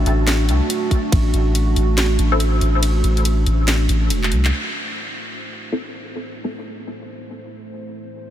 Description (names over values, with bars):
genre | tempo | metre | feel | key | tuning
deep dubstep | 141 BPM | 4/4 | swing 62% on 16ths, half-time | A dorian | A4 = 440 Hz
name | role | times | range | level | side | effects
dark analog pad | sustained chords | 0.0-8.3 s | A3 to C5 | -25 LUFS | right 2 dB | chorus
soft dub sub bass | bass | 0.0-4.5 s | E1 to C2 | -17 LUFS | equal | none
garage drum kit | drums | 0.1-4.5 s | handclaps, hi-hat, ride cymbal, snare drum | -25 LUFS | equal | none
electronic kick drum | drums | 0.9-1.2 s | none | -16 LUFS | equal | none
filtered dub chord stab | stabs | 2.3-2.4, 5.7-6.5 s | C4 to A4 | -29 LUFS | left 2 dB | phaser, ensemble chorus, dub echo
room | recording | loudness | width
light reverb | none | -16 LUFS | side -11 dB against mid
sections
0.0-4.5 A section; 4.5-8.3 B section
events
drop 0.0-4.5; kick drops out 2.8-4.5; drum fill 4.2-4.5; band accent 4.4; filter sweep on analog synth pad 4.5-8.3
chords
0.0 N.C.; 4.5 Am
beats
0.27 0.70 | 1.12 1.55 1.98 2.40 | 2.83 3.25 3.68 4.10 | 4.53 4.96 5.38 5.81 | 6.23 6.66 7.08 7.51 | 7.93